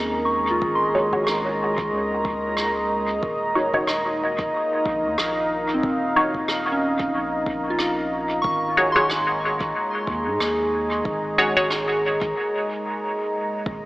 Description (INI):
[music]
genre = ambient dub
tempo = 92 BPM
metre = 4/4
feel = swing 56% on 16ths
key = unclear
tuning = A4 = 441 Hz
[part]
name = deep dark ambient pad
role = sustained chords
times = 0.0-13.9 s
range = Ab3 to Bb5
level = -24 LUFS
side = equal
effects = chorus, built-in reverb
[part]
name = soft synth bell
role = arpeggios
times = 0.0-13.7 s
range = C4 to Db6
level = -27 LUFS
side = equal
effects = chorus, low-pass filter, dub echo
[part]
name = warm sub bass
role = bass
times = 0.0-13.9 s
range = Eb1 to Ab2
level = -36 LUFS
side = equal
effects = none
[part]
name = electronic kick drum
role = drums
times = 0.6-13.8 s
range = none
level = -32 LUFS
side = equal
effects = none
[part]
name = filtered dub chord stab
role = stabs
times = 0.9-11.8 s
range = Eb4 to Db5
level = -24 LUFS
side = equal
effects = phaser, dub echo
[part]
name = rim click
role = drums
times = 1.3-11.9 s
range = none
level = -31 LUFS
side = equal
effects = dub echo
[sound]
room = wet concert hall reverb, RT60 2.0 s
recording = AM radio sound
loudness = -20 LUFS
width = side -19 dB against mid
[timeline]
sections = 0.0-13.7 A section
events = break 12.4-13.7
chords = 0.0 Ab7sus4; 3.2 Ebm7; 8.4 Ab7sus4